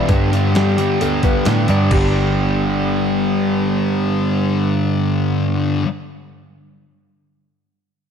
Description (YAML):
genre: rock, shoegaze and dream pop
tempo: 132 BPM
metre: 4/4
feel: straight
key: G major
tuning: A4 = 440 Hz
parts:
  - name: direct-recorded clean electric guitar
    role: arpeggios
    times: 0.0-2.6 s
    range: G4 to D5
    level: -24 LUFS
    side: left 6 dB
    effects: analog chorus, slapback echo
  - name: overdriven electric guitar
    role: riff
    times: 0.0-5.9 s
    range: G2 to G4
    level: -21 LUFS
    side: right 12 dB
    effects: reverse reverb
  - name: thick fuzz guitar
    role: riff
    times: 0.0-5.9 s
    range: G2 to G3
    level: -19 LUFS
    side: left 6 dB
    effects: distortion, lush chorus
  - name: vintage muted picked electric bass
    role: bass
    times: 0.1-5.8 s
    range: G1 to A2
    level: -20 LUFS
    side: equal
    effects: none
  - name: dusty soul sampler-style drum kit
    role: drums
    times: 0.1-2.0 s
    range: crash cymbal, hi-hat, kick drum, snare drum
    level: -21 LUFS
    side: equal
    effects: none
room: moderate lush hall reverb, RT60 1.9 s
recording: none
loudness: -15 LUFS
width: side -7 dB against mid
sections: 0.0-1.9 A section; 1.9-5.6 B section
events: kick and snare drop out 1.7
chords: 0.1 G